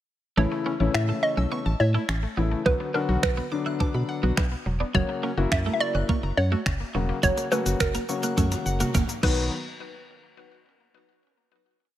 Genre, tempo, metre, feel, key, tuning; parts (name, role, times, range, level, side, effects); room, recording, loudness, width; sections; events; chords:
dance-pop; 105 BPM; 4/4; straight; B harmonic minor; A4 = 440 Hz
hollow square pluck; melody; 0.4-9.5 s; A#4 to E5; -28 LUFS; right 1 dB; chorus, digital delay
warm concert grand piano; accompaniment; 0.4-9.5 s; C#3 to F#4; -30 LUFS; left 4 dB; sidechain pumping
mallet-like synth pluck; arpeggios; 0.4-9.5 s; E3 to F#6; -35 LUFS; left 2 dB; chorus, sidechain pumping, digital delay
twelve-string electric guitar; riff; 0.4-9.4 s; F#3 to E4; -32 LUFS; right 6 dB; wide subtle chorus
organ-like FM bass; bass; 0.4-9.5 s; E1 to B2; -25 LUFS; equal; sidechain pumping
gated 80s digital drum machine; drums; 0.9-9.4 s; crash cymbal, finger snaps, hi-hat, kick drum, shaker, toms; -27 LUFS; equal; gated reverb
light reverb; -22 LUFS; side -12 dB against mid
0.4-9.5 verse; 9.5-11.8 final hit
drum fill 8.4-9.5
0.4 A; 2.7 Bm; 4.9 F#; 9.2 B; 9.5 N.C.